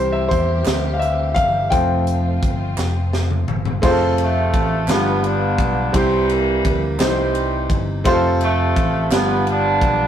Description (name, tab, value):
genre	slow gospel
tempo	57 BPM (dotted quarters)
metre	6/8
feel	straight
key	F major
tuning	A4 = 440 Hz
part	clear concert grand piano	accompaniment	0.0-10.1 s	G2 to G5	-20 LUFS	equal	none
part	rich symphonic string section	sustained chords	0.0-3.8 s	E3 to G4	-31 LUFS	equal	none
part	fingered electric bass	bass	0.0-10.1 s	F1 to E2	-22 LUFS	left 1 dB	none
part	crisp fusion drum kit	drums	0.3-10.0 s	crash cymbal, hi-hat, kick drum, ride cymbal, snare drum, toms	-23 LUFS	equal	none
part	group handclap	percussion	0.7-9.4 s	none	-33 LUFS	right 3 dB	none
part	mellow horn section	melody	4.2-10.1 s	C3 to D4	-20 LUFS	right 1 dB	none
room	moderate stone room reverb, RT60 1.1 s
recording	rough rehearsal-room recording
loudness	-16 LUFS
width	side -10 dB against mid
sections	0.0-3.8 A section; 3.8-10.1 B section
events	grand piano solo 0.0-3.8; drum fill 2.8-3.8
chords	0.0 C; 1.7 F; 4.9 G7; 5.9 C; 8.1 F; 9.1 G7